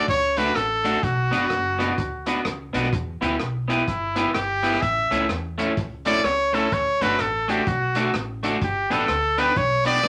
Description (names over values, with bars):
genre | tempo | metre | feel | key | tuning
ska | 126 BPM | 4/4 | swing 62% on 8ths | D major | A4 = 442 Hz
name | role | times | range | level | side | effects
bright trumpet | melody | 0.0-10.1 s | E4 to E5 | -24 LUFS | equal | none
electric guitar at the edge of break-up | accompaniment | 0.0-10.0 s | A3 to B4 | -27 LUFS | equal | tape echo
upright bass | bass | 0.1-10.1 s | F#1 to E2 | -33 LUFS | equal | none
crunchy breakbeat drum kit | drums | 0.1-10.1 s | hi-hat, kick drum, rim click | -32 LUFS | equal | none
room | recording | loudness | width
wet studio reverb, RT60 0.5 s | none | -23 LUFS | mono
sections
0.0-10.1 A section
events
trumpet solo 0.0-10.1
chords
0.0 D; 1.0 Bm; 2.9 Em; 4.8 A; 6.7 D; 8.6 G